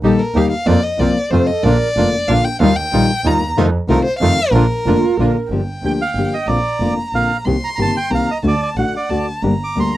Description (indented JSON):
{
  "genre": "tango",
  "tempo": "184 BPM",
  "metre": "3/4",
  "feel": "rubato",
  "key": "Bb major, G minor from 5.5 s",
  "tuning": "A4 = 441 Hz",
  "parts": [
    { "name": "warm violin", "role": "second line", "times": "0.0-10.0 s", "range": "A4 to C6", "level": "-21 LUFS", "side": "left 1 dB", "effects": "none" },
    { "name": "nylon-string guitar", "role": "accompaniment", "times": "0.0-9.9 s", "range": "C3 to G4", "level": "-18 LUFS", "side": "left 3 dB", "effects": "none" },
    { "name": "bandoneon", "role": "stabs", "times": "0.0-5.3 s", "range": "G3 to G4", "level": "-22 LUFS", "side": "right 6 dB", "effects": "none" },
    { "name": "clear double bass", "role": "bass", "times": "0.0-9.9 s", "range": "F1 to F2", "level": "-19 LUFS", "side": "right 2 dB", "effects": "none" },
    { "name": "mellow hollow concert flute", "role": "second line", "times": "1.3-1.9, 4.9-5.5 s", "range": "F4 to Bb4", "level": "-20 LUFS", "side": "right 8 dB", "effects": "none" },
    { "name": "bandoneon", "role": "melody", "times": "5.9-10.0 s", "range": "D5 to D6", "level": "-20 LUFS", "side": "right 3 dB", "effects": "none" }
  ],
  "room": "light reverb",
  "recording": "dry, close 1970s-style studio recording",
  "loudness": "-14 LUFS",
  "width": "side -14 dB against mid",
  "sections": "0.0-5.5 A section; 5.5-10.0 B section",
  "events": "violin solo 0.0-5.5",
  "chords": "0.0 Eb; 0.7 Fsus4; 1.3 F; 1.6 Bb; 2.6 Ebadd9; 3.6 F7; 4.5 Bb; 5.5 Gm7; 6.5 Bbadd9; 7.5 Cm7; 8.4 D; 9.4 Gm"
}